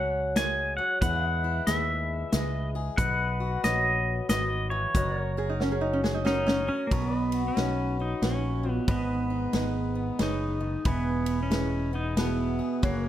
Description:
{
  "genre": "honky-tonk and classic country",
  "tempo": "91 BPM",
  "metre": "3/4",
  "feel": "swing 62% on 8ths",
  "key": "B major",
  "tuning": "A4 = 440 Hz",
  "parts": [
    { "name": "pedal steel guitar", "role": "melody", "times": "0.0-13.1 s", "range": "A#3 to G#5", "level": "-29 LUFS", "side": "right 1 dB", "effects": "none" },
    { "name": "picked swing-style acoustic guitar", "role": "accompaniment", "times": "0.0-13.1 s", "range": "G#2 to B4", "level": "-34 LUFS", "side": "left 3 dB", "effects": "none" },
    { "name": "warm upright piano", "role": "accompaniment", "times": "0.0-12.7 s", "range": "D#4 to E5", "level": "-38 LUFS", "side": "right 6 dB", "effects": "none" },
    { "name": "pedal steel guitar", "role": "sustained chords", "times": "0.0-13.1 s", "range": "A#4 to G#5", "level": "-39 LUFS", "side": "equal", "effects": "none" },
    { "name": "fingered electric bass", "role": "bass", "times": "0.0-13.1 s", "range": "E1 to E2", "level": "-31 LUFS", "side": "equal", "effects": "none" },
    { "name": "natural country drum kit", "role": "drums", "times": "0.4-13.0 s", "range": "hi-hat, kick drum, ride cymbal, snare drum", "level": "-29 LUFS", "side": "left 1 dB", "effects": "none" },
    { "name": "lap resonator guitar", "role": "second line", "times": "5.4-6.8 s", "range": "C#4 to G#4", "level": "-30 LUFS", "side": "right 1 dB", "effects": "none" }
  ],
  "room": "light reverb",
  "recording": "none",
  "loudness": "-25 LUFS",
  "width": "side -12 dB against mid",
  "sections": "0.0-6.9 A section; 6.9-13.1 B section",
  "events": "drum fill 5.6-6.9",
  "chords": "0.0 F#; 1.0 E; 3.0 B; 5.0 F#; 6.9 B; 8.9 G#m; 10.9 E"
}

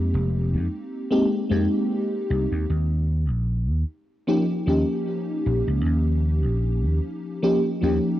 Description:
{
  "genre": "vaporwave",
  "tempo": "76 BPM",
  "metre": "4/4",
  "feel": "swing 54% on 16ths",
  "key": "unclear",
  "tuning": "A4 = 439 Hz",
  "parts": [
    { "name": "FM electric piano with soft pad layer", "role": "accompaniment", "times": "0.0-8.2 s", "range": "F3 to G4", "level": "-23 LUFS", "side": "equal", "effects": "analog chorus, tape echo" },
    { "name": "vintage slap bass", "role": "bass", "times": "0.0-8.0 s", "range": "F1 to F2", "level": "-22 LUFS", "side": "equal", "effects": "none" }
  ],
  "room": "moderate plate reverb, RT60 2.7 s",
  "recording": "cassette tape",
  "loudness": "-21 LUFS",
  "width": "side -14 dB against mid",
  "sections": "0.0-8.2 A section",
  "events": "none",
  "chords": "0.0 Fm11; 2.7 Eb9"
}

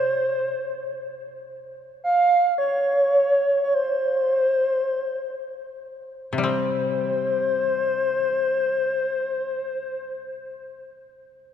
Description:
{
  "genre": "japanese traditional",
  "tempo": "free time",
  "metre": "none",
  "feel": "none",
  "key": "unclear",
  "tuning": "A4 = 443 Hz",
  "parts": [
    { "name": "pure breathy sine lead", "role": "melody", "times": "0.0-10.9 s", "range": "C5 to F5", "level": "-22 LUFS", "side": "equal", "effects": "chorus" },
    { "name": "koto", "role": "accompaniment", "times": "0.0-10.9 s", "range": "C3 to C4", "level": "-29 LUFS", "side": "left 4 dB", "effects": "none" }
  ],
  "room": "wet cathedral reverb, RT60 4.5 s",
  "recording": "none",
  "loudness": "-20 LUFS",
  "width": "side -9 dB against mid",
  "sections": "0.0-6.4 A section; 6.4-11.5 B section",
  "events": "slowing down 0.0-6.4",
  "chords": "none"
}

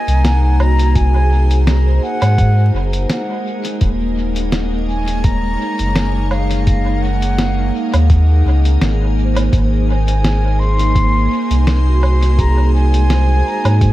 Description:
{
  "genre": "ambient dub",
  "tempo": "84 BPM",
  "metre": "4/4",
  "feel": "swing 55% on 16ths",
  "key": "unclear",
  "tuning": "A4 = 440 Hz",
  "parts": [
    { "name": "mellow silver concert flute", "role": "melody", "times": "0.0-13.9 s", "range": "F5 to C6", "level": "-23 LUFS", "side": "equal", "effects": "analog delay" },
    { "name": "soft additive organ-like pad", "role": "sustained chords", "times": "0.0-13.9 s", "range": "Bb3 to Db5", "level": "-22 LUFS", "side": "right 1 dB", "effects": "ensemble chorus, built-in reverb" },
    { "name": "vibraphone with soft mallets", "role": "arpeggios", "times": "0.1-13.9 s", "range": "Ab3 to Bb5", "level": "-26 LUFS", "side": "right 1 dB", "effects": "analog delay" },
    { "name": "warm sub bass", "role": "bass", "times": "0.1-13.9 s", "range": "Eb1 to Ab2", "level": "-13 LUFS", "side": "equal", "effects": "tube saturation" },
    { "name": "lo-fi sampler-style drum kit", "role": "drums", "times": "0.1-13.9 s", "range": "hi-hat, snare drum, woodblock", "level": "-22 LUFS", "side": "equal", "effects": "studio ambience, dub echo" },
    { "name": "electronic kick drum", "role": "drums", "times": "1.0-13.9 s", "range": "none", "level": "-15 LUFS", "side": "equal", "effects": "studio ambience" }
  ],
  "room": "little or no reverb",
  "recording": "echo-heavy mix, vinyl crackle",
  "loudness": "-12 LUFS",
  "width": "side -15 dB against mid",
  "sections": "0.0-13.9 A section",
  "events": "none",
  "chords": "0.0 Ab7; 3.8 Ebm7; 9.5 Ab7"
}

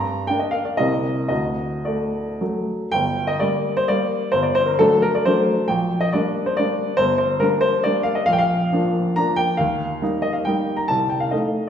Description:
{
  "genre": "classical, romantic triple-time dance for piano with dotted rhythms",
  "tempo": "105-153 BPM",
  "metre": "3/4",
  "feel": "rubato",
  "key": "G minor",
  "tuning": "A4 = 440 Hz",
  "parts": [
    { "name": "warm baby grand piano", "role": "solo", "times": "0.0-11.7 s", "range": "G1 to Bb5", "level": "-18 LUFS", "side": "equal", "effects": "none" }
  ],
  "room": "wet recital hall reverb, RT60 1.6 s",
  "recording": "heard from further back in the room",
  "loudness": "-18 LUFS",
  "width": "side -8 dB against mid",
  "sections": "0.0-2.9 A section; 2.9-11.7 B section",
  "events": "none",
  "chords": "0.0 Gm; 0.8 Cm7; 1.3 D; 2.9 Gm; 4.3 D7/G; 5.7 Gm/Bb; 7.0 Gm; 8.3 Bb; 9.6 Eb; 10.9 Adim/C"
}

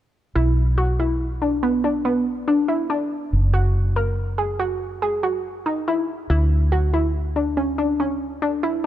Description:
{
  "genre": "progressive instrumental, progressive",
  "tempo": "141 BPM",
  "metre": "7/4",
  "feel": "straight",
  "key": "unclear",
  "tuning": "A4 = 440 Hz",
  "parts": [
    { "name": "resonant blip pluck", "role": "arpeggios", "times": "0.4-8.9 s", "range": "B3 to A#4", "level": "-22 LUFS", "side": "equal", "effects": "chorus" },
    { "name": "fingered electric bass", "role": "bass", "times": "0.4-8.9 s", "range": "F#1 to D2", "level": "-21 LUFS", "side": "equal", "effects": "none" }
  ],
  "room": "light reverb",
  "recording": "dark, warm production",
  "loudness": "-19 LUFS",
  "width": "side -12 dB against mid",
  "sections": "0.4-8.9 A section",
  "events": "none",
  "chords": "0.4 Bm; 3.3 F#add9; 6.3 Dmaj7"
}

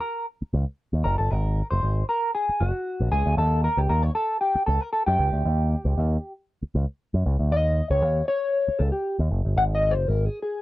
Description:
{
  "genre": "funk",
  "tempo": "116 BPM",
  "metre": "4/4",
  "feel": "straight",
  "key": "Eb mixolydian",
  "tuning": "A4 = 440 Hz",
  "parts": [
    { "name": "mellow electric guitar", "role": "accompaniment", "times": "0.0-10.6 s", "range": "Gb4 to Gb5", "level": "-24 LUFS", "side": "left 1 dB", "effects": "wah, lush chorus" },
    { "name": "picked electric bass with an envelope filter", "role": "bass", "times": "0.4-10.3 s", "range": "Gb1 to Gb2", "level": "-22 LUFS", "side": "equal", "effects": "none" }
  ],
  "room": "little or no reverb",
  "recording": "dry, close 1970s-style studio recording",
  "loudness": "-22 LUFS",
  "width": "side -16 dB against mid",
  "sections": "0.0-10.6 A section",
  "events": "clean electric guitar solo 0.0-10.6",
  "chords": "0.0 Eb7(no3) (rootless); 1.3 Absus2; 3.4 Eb7; 9.6 Absus2"
}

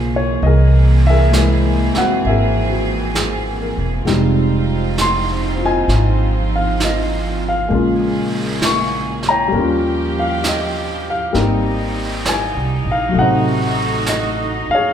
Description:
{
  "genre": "jazz ballad",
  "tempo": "66 BPM",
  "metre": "4/4",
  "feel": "swing 69% on 8ths",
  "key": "unclear",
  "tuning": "A4 = 440 Hz",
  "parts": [
    { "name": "warm grand piano", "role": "accompaniment", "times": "0.0-14.9 s", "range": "C3 to Db6", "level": "-18 LUFS", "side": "left 2 dB", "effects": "none" },
    { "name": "warm symphonic string section", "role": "sustained chords", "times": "0.0-14.9 s", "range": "Db3 to Ab4", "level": "-23 LUFS", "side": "right 3 dB", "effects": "none" },
    { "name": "upright bass", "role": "bass", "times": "0.0-14.7 s", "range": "E1 to Eb2", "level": "-18 LUFS", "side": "right 1 dB", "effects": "none" },
    { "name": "vintage brush drum kit", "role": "drums", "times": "0.4-14.9 s", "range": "brushed snare drum, hi-hat, snare drum", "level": "-25 LUFS", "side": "right 3 dB", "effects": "none" }
  ],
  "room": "moderate large studio reverb, RT60 1.4 s",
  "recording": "band playing live in one room",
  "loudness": "-14 LUFS",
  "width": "side -9 dB against mid",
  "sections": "0.0-14.9 A section",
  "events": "none",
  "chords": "0.4 Caug7; 4.1 Fm9; 7.7 Bbm7; 9.5 Eb9; 11.3 Abmaj7; 13.2 Adim7"
}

